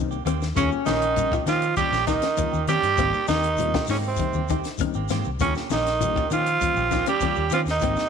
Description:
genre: afrobeat.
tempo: 99 BPM.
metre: 4/4.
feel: straight.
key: Eb mixolydian.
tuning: A4 = 439 Hz.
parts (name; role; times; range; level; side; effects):
reed electric piano; accompaniment; 0.0-8.0 s; G3 to G4; -35 LUFS; left 14 dB; fast tremolo.
qanun; arpeggios; 0.0-8.1 s; C4 to G4; -30 LUFS; left 14 dB; none.
vintage muted fingered electric bass; bass; 0.0-7.9 s; Ab1 to Eb3; -28 LUFS; left 1 dB; none.
semi-hollow electric guitar; stabs; 0.1-8.1 s; Eb3 to G4; -34 LUFS; right 12 dB; none.
shekere; percussion; 0.1-8.1 s; none; -36 LUFS; left 8 dB; none.
compact cocktail drum kit; drums; 0.3-8.1 s; hi-hat, kick drum, snare drum; -31 LUFS; left 1 dB; none.
congas; percussion; 0.3-8.0 s; none; -33 LUFS; left 12 dB; none.
raspy tenor saxophone; melody; 0.6-8.1 s; C4 to G4; -24 LUFS; right 3 dB; none.
clear tenor saxophone; second line; 0.6-8.1 s; C3 to G3; -29 LUFS; right 13 dB; none.
room: light reverb, small room ambience.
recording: 1960s-style stereo with parts hard left and right.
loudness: -20 LUFS.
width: side -7 dB against mid.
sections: 0.0-8.1 A section.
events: none.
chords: 0.0 Abmaj9 (rootless); 0.6 Eb7; 3.0 Abmaj9; 5.4 Eb7.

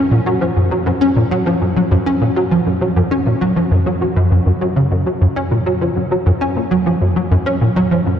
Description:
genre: ambient.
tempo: 100 BPM.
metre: 4/4.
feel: straight.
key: Gb major.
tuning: A4 = 440 Hz.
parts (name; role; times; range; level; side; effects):
plucky analog bass; solo; 0.0-8.2 s; Gb2 to Db4; -13 LUFS; equal; ensemble chorus, tape echo.
room: wet cathedral reverb, RT60 6.8 s.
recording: in a vast, echoing space.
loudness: -13 LUFS.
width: side -9 dB against mid.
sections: 0.0-4.9 A section; 4.9-8.2 B section.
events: none.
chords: none.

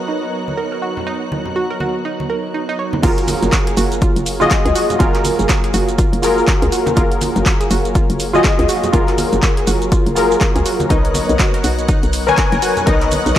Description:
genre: deep house.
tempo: 122 BPM.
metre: 4/4.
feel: swing 59% on 16ths.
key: F# major.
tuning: A4 = 439 Hz.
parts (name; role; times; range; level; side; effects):
airy breathy pad; sustained chords; 0.0-13.4 s; F#3 to A#5; -26 LUFS; right 1 dB; chorus, sidechain pumping.
warm analog keys; stabs; 0.0-13.4 s; E#4 to G#5; -18 LUFS; left 1 dB; chorus, sidechain pumping, analog delay.
string machine, violins; texture; 0.0-3.0, 10.9-13.4 s; F#4 to F#6; -30 LUFS; equal; ensemble chorus.
analog pluck; arpeggios; 0.1-13.4 s; D#4 to C#5; -24 LUFS; right 3 dB; chorus, sidechain pumping, analog delay.
congas; percussion; 0.5-13.3 s; none; -26 LUFS; right 2 dB; none.
hollow knocking FM bass; bass; 3.0-13.3 s; F#1 to C#2; -20 LUFS; equal; sidechain pumping.
deep house drum kit; drums; 3.0-13.4 s; crash cymbal, handclaps, hi-hat, shaker; -23 LUFS; equal; none.
electronic kick drum; drums; 3.0-13.4 s; none; -16 LUFS; equal; none.
room: light reverb.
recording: dry, gritty hardware recording.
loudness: -13 LUFS.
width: side -12 dB against mid.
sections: 0.0-3.0 A section; 3.0-13.4 B section.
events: drop 3.0-13.4.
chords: 0.0 Bmaj9; 3.0 F#maj9; 10.9 Bmaj9.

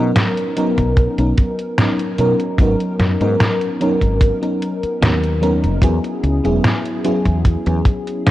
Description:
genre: vaporwave.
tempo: 74 BPM.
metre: 4/4.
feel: straight.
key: unclear.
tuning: A4 = 440 Hz.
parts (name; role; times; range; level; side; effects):
FM electric piano with soft pad layer; accompaniment; 0.0-8.3 s; F#3 to A#4; -18 LUFS; equal; tremolo, analog chorus, analog delay.
woody fretless electric bass; bass; 0.0-7.8 s; E1 to B2; -18 LUFS; equal; tube saturation.
detuned 8-bit digital drum machine; drums; 0.2-8.3 s; hi-hat, snare drum; -19 LUFS; equal; small room ambience.
kick drum; drums; 0.8-8.0 s; none; -14 LUFS; equal; small room ambience.
room: light reverb, studio ambience.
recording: worn, warbling old tape, cassette tape, warbly pitch drift.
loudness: -14 LUFS.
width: side -15 dB against mid.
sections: 0.0-8.3 A section.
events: none.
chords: 0.0 Bmaj7; 2.6 G#m11; 5.8 E69.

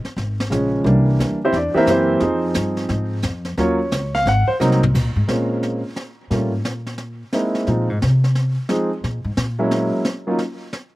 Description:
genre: jazz piano trio.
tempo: 176 BPM.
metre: 4/4.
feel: swing 64% on 8ths.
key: Bb minor from 4.9 s.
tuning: A4 = 440 Hz.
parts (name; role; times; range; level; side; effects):
upright bass; bass; 0.0-9.9 s; Ab1 to C3; -20 LUFS; equal; none.
jazz brush drum kit; drums; 0.0-11.0 s; brushed snare drum, crash cymbal, hi-hat, kick drum, snare drum, toms; -27 LUFS; equal; none.
warm grand piano; melody; 0.5-10.4 s; Db3 to Gb5; -19 LUFS; right 1 dB; none.
room: little or no reverb.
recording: recorded outdoors, with no room sound.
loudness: -17 LUFS.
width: side -18 dB against mid.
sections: 0.0-4.9 A section; 4.9-11.0 A section.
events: grand piano solo 0.0-4.9; drum fill 4.6-4.9; upright bass solo 4.9-11.0.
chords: 0.0 Bbm7; 0.9 C7; 2.2 Fm7; 3.6 Ebm7; 4.3 Ab7; 4.9 Bbm9; 7.0 C7alt; 7.7 Fm7; 9.0 N.C.; 9.7 Gb9; 10.4 N.C..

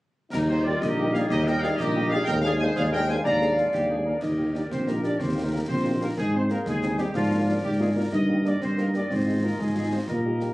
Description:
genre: military-style march for wind band.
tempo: 123 BPM (dotted quarters).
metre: 6/8.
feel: straight.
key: Eb major.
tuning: A4 = 440 Hz.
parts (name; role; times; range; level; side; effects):
dark trumpet section; melody; 0.3-10.5 s; F4 to Bb5; -32 LUFS; left 1 dB; none.
mellow large flute ensemble; second line; 0.3-4.2 s; G4 to F5; -35 LUFS; equal; none.
warm woodwind section; second line; 0.3-10.4 s; Eb4 to Eb5; -30 LUFS; equal; none.
warm trombone section; sustained chords; 0.3-4.1 s; G3 to Eb4; -31 LUFS; equal; none.
mellow tuba; bass; 0.3-10.5 s; Bb1 to Bb2; -25 LUFS; equal; none.
concert snare drum, clash cymbals and concert bass drum; drums; 0.3-10.5 s; none; -36 LUFS; equal; none.
mellow French horn section; accompaniment; 0.5-10.5 s; G3 to Ab4; -32 LUFS; left 1 dB; none.
warm euphonium; second line; 3.6-10.5 s; F3 to Eb4; -31 LUFS; right 1 dB; none.
room: moderate booth ambience, RT60 0.2 s.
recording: recorded on a phone in the room, studio ambience.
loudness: -22 LUFS.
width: side -18 dB against mid.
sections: 0.3-4.2 A section; 4.2-10.5 B section.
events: none.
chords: 0.3 Eb; 2.3 Bb7/Eb; 4.2 Eb; 6.2 Ab; 7.2 Bb7/Ab; 8.1 Eb/G; 9.1 Fm7/Ab.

